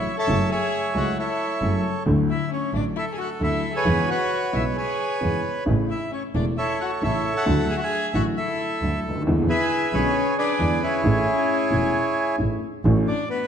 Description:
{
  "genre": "tango",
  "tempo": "134 BPM",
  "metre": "4/4",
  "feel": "rubato",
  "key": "A major",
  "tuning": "A4 = 440 Hz",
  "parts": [
    { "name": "bandoneon", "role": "melody", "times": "0.0-13.5 s", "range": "E4 to A5", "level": "-24 LUFS", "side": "right 2 dB", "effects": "none" },
    { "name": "warm violin", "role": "second line", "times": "0.0-13.5 s", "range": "B3 to A4", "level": "-29 LUFS", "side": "left 7 dB", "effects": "none" },
    { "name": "warm upright piano", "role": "accompaniment", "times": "0.0-13.0 s", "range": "E1 to G#4", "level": "-26 LUFS", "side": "left 1 dB", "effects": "none" },
    { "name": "dark double bass", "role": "bass", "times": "0.0-13.0 s", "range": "E1 to E2", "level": "-25 LUFS", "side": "right 2 dB", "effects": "none" }
  ],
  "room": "moderate recital hall reverb, RT60 1.5 s",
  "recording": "dark, warm production",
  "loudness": "-20 LUFS",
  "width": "side -8 dB against mid",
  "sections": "0.0-12.8 A section",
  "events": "none",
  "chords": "0.3 F#m7; 2.1 Dadd9; 3.9 E6; 5.7 A; 7.5 Dadd9; 9.3 E7; 11.0 Amaj7; 12.8 A6"
}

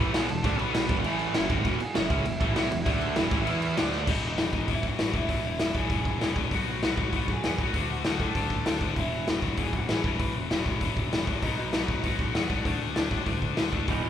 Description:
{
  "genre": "punk rock",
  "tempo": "196 BPM",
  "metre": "4/4",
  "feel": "straight",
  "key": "E major",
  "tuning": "A4 = 440 Hz",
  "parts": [
    { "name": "bluesy overdriven lead guitar", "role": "melody", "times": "0.0-14.1 s", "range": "D4 to B5", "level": "-36 LUFS", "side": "right 2 dB", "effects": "distortion" },
    { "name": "distorted electric guitar", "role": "riff", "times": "0.0-14.1 s", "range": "E2 to E4", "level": "-31 LUFS", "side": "left 7 dB", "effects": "distortion" },
    { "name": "overdriven semi-hollow guitar", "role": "riff", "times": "0.0-4.1, 13.9-14.1 s", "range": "E2 to E4", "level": "-32 LUFS", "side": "right 9 dB", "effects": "none" },
    { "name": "modern bright picked electric bass", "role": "bass", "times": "0.0-14.1 s", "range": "E1 to A2", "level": "-35 LUFS", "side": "equal", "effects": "none" },
    { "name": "raw garage drum kit", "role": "drums", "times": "0.1-14.0 s", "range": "crash cymbal, hi-hat, kick drum, snare drum", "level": "-27 LUFS", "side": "equal", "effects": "none" }
  ],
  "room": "light reverb",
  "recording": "band playing live in one room",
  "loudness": "-25 LUFS",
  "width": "side -10 dB against mid",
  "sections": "0.0-4.1 A section; 4.1-14.1 B section",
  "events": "drum fill 3.9",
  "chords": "0.0 E; 0.6 B5; 0.9 E5; 1.0 A5; 1.3 E; 2.9 D5; 3.2 E5; 3.8 D5; 4.1 E; 6.5 B5; 7.7 D; 9.0 E; 11.4 B; 12.7 D5"
}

